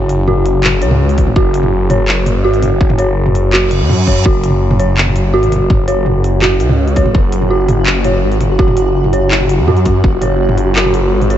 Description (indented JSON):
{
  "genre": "half-time drum and bass",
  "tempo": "166 BPM",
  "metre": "4/4",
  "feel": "half-time",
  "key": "unclear",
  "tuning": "A4 = 441 Hz",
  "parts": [
    { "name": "dark detuned synth bell", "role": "arpeggios", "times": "0.0-11.4 s", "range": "F#4 to C#5", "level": "-16 LUFS", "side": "right 1 dB", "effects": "chorus, vintage 12-bit sampler grit, digital delay" },
    { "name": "phased detuned saw bass", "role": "bass", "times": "0.0-11.4 s", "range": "E1 to F#2", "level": "-13 LUFS", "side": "equal", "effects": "phaser" },
    { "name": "drum and bass drum kit", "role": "drums", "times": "0.1-11.4 s", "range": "handclaps, hi-hat, toms", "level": "-18 LUFS", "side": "equal", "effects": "studio ambience" },
    { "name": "electronic kick drum", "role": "drums", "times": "1.2-10.1 s", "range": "none", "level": "-12 LUFS", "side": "equal", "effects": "studio ambience" },
    { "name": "reverse cymbal", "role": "sound effects", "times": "3.7-4.3 s", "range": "none", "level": "-24 LUFS", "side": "right 6 dB", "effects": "none" },
    { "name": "flickering grainy texture", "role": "texture", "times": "5.2-11.4 s", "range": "F#4", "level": "-22 LUFS", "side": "right 1 dB", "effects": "built-in reverb" }
  ],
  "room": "little or no reverb",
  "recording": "nothing above 8.0 kHz",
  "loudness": "-10 LUFS",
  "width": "side -11 dB against mid",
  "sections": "0.0-11.4 A section",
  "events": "reverse cymbal 3.7-4.3",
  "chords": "0.0 F#5"
}